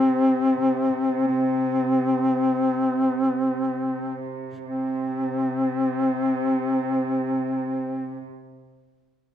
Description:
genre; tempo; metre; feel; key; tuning
caucasian folk, Caucasian lament; free time; none; none; unclear; A4 = 441 Hz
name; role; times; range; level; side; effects
mellow duduk; melody; 0.0-8.2 s; C4; -22 LUFS; left 1 dB; none
warm studio string section; drone; 0.0-8.2 s; C3; -31 LUFS; right 4 dB; none
room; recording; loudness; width
moderate recital hall reverb, RT60 1.5 s; none; -21 LUFS; side -10 dB against mid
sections
0.0-4.6 A section; 4.6-8.5 B section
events
slowing down 0.0-4.6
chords
none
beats
free time

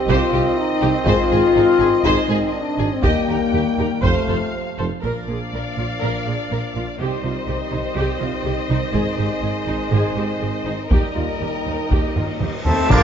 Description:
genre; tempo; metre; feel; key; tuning
cinematic, epic orchestral film score; 122 BPM; 4/4; straight; unclear; A4 = 440 Hz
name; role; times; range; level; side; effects
warm symphonic violin section; melody; 0.0-13.0 s; A4 to G5; -30 LUFS; left 4 dB; none
mellow French horn section; sustained chords; 0.0-13.0 s; A3 to Bb4; -22 LUFS; left 4 dB; none
warm trombone section; sustained chords; 0.0-13.0 s; C3 to C4; -28 LUFS; right 5 dB; none
rich symphonic violin section; second line; 0.1-13.0 s; Eb4 to D6; -28 LUFS; left 3 dB; none
rich symphonic viola section; accompaniment; 0.1-13.0 s; D3 to C5; -28 LUFS; equal; none
mellow tuba; bass; 0.1-4.9, 12.9-13.0 s; F1 to Eb2; -29 LUFS; right 4 dB; none
rich symphonic cello section; bass; 0.1-13.0 s; Eb2 to Bb3; -26 LUFS; right 3 dB; none
warm symphonic double bass section; bass; 0.1-13.0 s; F1 to Eb2; -27 LUFS; right 4 dB; none
taiko ensemble; drums; 0.1-6.0, 8.9-13.0 s; none; -22 LUFS; equal; none
timpani; percussion; 5.0-5.7, 12.9-13.0 s; Bb2; -24 LUFS; left 2 dB; none
triangle, cymbal swell, clash cymbals and concert bass drum; percussion; 5.0-6.0, 8.9-13.0 s; none; -30 LUFS; equal; none
reverse cymbal and sub drop; sound effects; 12.5-13.0 s; none; -28 LUFS; left 3 dB; none
concert flute; second line; 12.6-13.0 s; A5 to Bb5; -22 LUFS; left 3 dB; none
mellow trumpet; stabs; 12.7-13.0 s; C4 to D4; -20 LUFS; right 3 dB; none
bright woodwind section; sustained chords; 12.9-13.0 s; F4 to F5; -23 LUFS; right 2 dB; none
room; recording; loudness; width
moderate scoring stage reverb, RT60 2.0 s; nothing above 7.7 kHz; -17 LUFS; side -8 dB against mid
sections
0.0-5.0 A section; 5.0-12.9 B section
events
drum fill 12.2-12.9; reverse cymbal 12.5-12.9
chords
0.0 Cm; 1.1 Ab; 3.0 Eb; 4.0 F; 5.0 Bb; 7.0 Cm; 8.9 Ab; 10.9 Eb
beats
0.09 0.57 | 1.06 1.55 2.04 2.53 | 3.02 3.52 4.03 4.53 | 5.03 5.53 6.02 6.51 | 6.99 7.48 7.97 8.45 | 8.94 9.43 9.92 10.41 | 10.91 11.41 11.91 12.41 | 12.91

